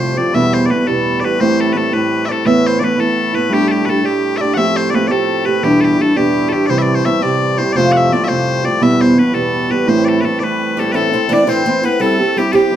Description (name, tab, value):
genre	celtic folk, Celtic jig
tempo	113 BPM (dotted quarters)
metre	6/8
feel	straight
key	A minor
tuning	A4 = 440 Hz
part	loud bright bagpipes	melody	0.0-12.8 s	G4 to F#5	-18 LUFS	left 4 dB	none
part	fingerpicked acoustic archtop guitar	accompaniment	0.0-12.8 s	E2 to G4	-14 LUFS	right 2 dB	none
part	hand-pumped harmonium	drone	0.0-11.0 s	A2 to E4	-26 LUFS	left 2 dB	none
part	Irish bouzouki	second line	10.8-12.8 s	G3 to D4	-22 LUFS	right 3 dB	none
part	breathy bright large pan pipes	second line	10.8-12.8 s	G4 to D5	-20 LUFS	left 5 dB	none
room	wet studio reverb, RT60 0.6 s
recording	heard from further back in the room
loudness	-12 LUFS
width	side -10 dB against mid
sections	0.0-2.5 A section; 2.5-10.9 A section; 10.9-12.8 B section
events	none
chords	0.3 Em; 1.4 Am; 2.5 Asus2; 3.5 Gsus2; 4.6 Fadd9; 5.6 Em7; 6.7 C; 7.8 F; 8.8 Em; 9.9 Am; 12.0 C/G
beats	| 0.34 0.87 | 1.40 1.93 | 2.46 2.98 | 3.52 4.04 | 4.57 5.10 | 5.63 6.16 | 6.69 7.22 | 7.75 8.29 | 8.82 9.35 | 9.88 10.41 | 10.94 11.47 | 12.00 12.53